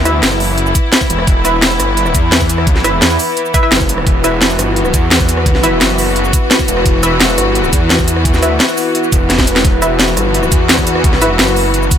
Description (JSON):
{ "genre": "dark technical drum and bass", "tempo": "172 BPM", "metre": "4/4", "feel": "straight", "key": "unclear", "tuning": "A4 = 440 Hz", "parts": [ { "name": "clear studio string section", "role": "sustained chords", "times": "0.0-12.0 s", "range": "E3 to F#4", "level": "-18 LUFS", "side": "left 2 dB", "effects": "sidechain pumping" }, { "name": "filtered dub chord stab", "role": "stabs", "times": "0.0-12.0 s", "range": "E4 to E5", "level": "-20 LUFS", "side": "right 1 dB", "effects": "chorus, digital delay" }, { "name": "wide detuned saw bass", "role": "bass", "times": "0.0-11.9 s", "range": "E1 to E2", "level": "-16 LUFS", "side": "equal", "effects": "chorus, overdrive" }, { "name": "warbly tape-like pad", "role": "texture", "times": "0.0-12.0 s", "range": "E4 to B5", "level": "-20 LUFS", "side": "equal", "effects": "chorus, built-in reverb, sidechain pumping" }, { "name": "drum and bass drum kit", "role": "drums", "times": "0.1-12.0 s", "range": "cabasa, hi-hat, rim click, snare drum", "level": "-14 LUFS", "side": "equal", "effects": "none" }, { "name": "electronic kick drum", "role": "drums", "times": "0.8-12.0 s", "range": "none", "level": "-14 LUFS", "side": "equal", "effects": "none" } ], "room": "light reverb", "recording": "none", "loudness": "-10 LUFS", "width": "side -9 dB against mid", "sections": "0.0-12.0 A section", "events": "drum fill 9.3-9.6", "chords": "0.0 E5", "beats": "0.23 0.58 0.93 | 1.27 1.62 1.97 2.32 | 2.67 3.02 3.37 3.72 | 4.07 4.41 4.76 5.11 | 5.46 5.81 6.16 6.51 | 6.86 7.20 7.55 7.90 | 8.25 8.60 8.95 9.30 | 9.65 9.99 10.34 10.69 | 11.04 11.39 11.74" }